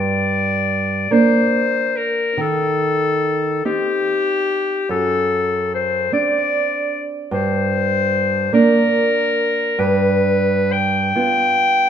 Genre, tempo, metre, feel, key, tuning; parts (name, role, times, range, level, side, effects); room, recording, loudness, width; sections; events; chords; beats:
romantic duo for clarinet and classical guitar; 48 BPM (dotted quarters); 6/8; uneven beats, rubato; G minor; A4 = 438 Hz
bright clarinet; melody; 0.0-11.9 s; G4 to G5; -18 LUFS; left 3 dB
nylon-string guitar; accompaniment; 0.0-11.9 s; F#2 to F4; -19 LUFS; right 3 dB
wet recital hall reverb, RT60 1.5 s; minimal, uncompressed stereo recording; -16 LUFS; side -8 dB against mid
0.0-11.9 A section
0.0 Gm; 2.4 Cm/Eb; 4.9 D7/F#; 7.3 Gm; 9.8 G7
1.11 | 2.37 3.65 | 4.89 6.11 | 7.32 8.53 | 9.79 11.16